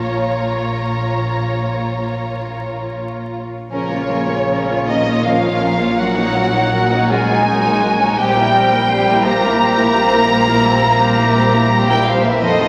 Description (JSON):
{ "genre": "classical, slow romantic movement for symphony orchestra", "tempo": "46-58 BPM (dotted quarters)", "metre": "12/8", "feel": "rubato", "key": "Bb minor", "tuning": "A4 = 440 Hz", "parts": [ { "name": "warm symphonic violin section", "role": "melody", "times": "0.0-12.7 s", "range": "Db5 to Bb5", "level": "-21 LUFS", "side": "equal", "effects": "none" }, { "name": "warm symphonic violin section", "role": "second line", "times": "0.0-12.7 s", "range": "Db4 to Db5", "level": "-23 LUFS", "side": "equal", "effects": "none" }, { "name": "rich symphonic viola section", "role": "accompaniment", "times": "0.0-12.7 s", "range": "F3 to Db5", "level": "-26 LUFS", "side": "equal", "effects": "none" }, { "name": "rich symphonic double bass section", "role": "bass", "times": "0.0-12.7 s", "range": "F1 to Bb1", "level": "-29 LUFS", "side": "equal", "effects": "none" }, { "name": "warm symphonic cello section", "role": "bass", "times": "0.0-12.7 s", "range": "F2 to Bb2", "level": "-25 LUFS", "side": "equal", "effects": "none" }, { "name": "bright small flute group", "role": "second line", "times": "3.7-12.7 s", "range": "Db5 to Bb5", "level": "-24 LUFS", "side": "equal", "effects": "none" }, { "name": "mellow French horn section", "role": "sustained chords", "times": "3.7-12.7 s", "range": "Db3 to Bb3", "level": "-22 LUFS", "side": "equal", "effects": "none" }, { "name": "clear oboe", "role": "second line", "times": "6.0-12.7 s", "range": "Eb4 to C5", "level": "-28 LUFS", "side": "equal", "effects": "none" } ], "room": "wet concert hall reverb, RT60 2.3 s", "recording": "tube saturation, vinyl crackle", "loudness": "-16 LUFS", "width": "mono", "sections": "0.0-3.7 A section; 3.7-12.7 A section", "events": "none", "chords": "0.0 Bbm; 6.0 Gb6/Bb; 8.2 C7/Bb" }